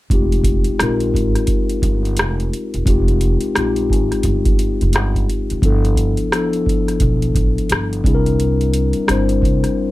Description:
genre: R&B, neo-soul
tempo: 87 BPM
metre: 4/4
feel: swing 63% on 16ths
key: F dorian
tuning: A4 = 440 Hz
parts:
  - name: mellow tine electric piano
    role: accompaniment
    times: 0.1-9.9 s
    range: F3 to C5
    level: -19 LUFS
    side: left 3 dB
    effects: none
  - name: upright bass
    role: bass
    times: 0.1-9.6 s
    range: E1 to C2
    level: -19 LUFS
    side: right 1 dB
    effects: none
  - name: booming analog drum machine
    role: drums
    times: 0.1-9.8 s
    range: hi-hat, kick drum, rim click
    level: -19 LUFS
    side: equal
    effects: none
room: light reverb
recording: none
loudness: -14 LUFS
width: side -17 dB against mid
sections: 0.1-9.9 A section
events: break 9.8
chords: 0.1 Fm9; 5.6 G13; 8.0 C9

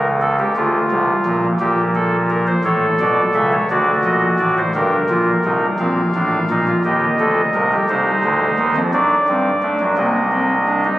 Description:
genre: classical, baroque-style 3-part fugue for pipe organ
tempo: 57 BPM (dotted quarters)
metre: 6/8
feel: straight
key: unclear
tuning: A4 = 440 Hz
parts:
  - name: chamber organ, soft reed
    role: solo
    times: 0.0-11.0 s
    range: G1 to F5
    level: -14 LUFS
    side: equal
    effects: none
room: wet cathedral reverb, RT60 7.0 s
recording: recorded on a phone in the room, studio reverb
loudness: -14 LUFS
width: side -15 dB against mid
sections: 0.0-5.8 A section; 5.8-11.0 B section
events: none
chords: 0.0 A/C#; 0.6 Dm; 1.6 Gm/Bb; 2.6 A; 3.7 D; 4.7 Gm; 5.8 Bb; 6.8 Ebmaj7; 7.9 Cmadd9; 8.9 D7/F#; 10.0 Cm

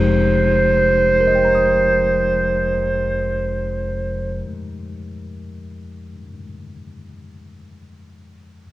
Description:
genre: jazz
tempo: 36 BPM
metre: 4/4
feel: swing 66% on 8ths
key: F minor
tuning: A4 = 441 Hz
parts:
  - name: growling clarinet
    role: melody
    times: 0.0-4.4 s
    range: C5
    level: -17 LUFS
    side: right 2 dB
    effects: none
  - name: barky tine electric piano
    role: accompaniment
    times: 0.0-8.7 s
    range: F2 to G6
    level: -24 LUFS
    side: left 4 dB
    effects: cassette tape
  - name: upright bass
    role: bass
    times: 0.0-4.4 s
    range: F1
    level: -25 LUFS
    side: equal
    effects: none
room: moderate spring reverb, RT60 2.3 s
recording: home recording on cassette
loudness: -15 LUFS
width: side -16 dB against mid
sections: 0.0-6.1 A section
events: none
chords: 0.0 Fm9

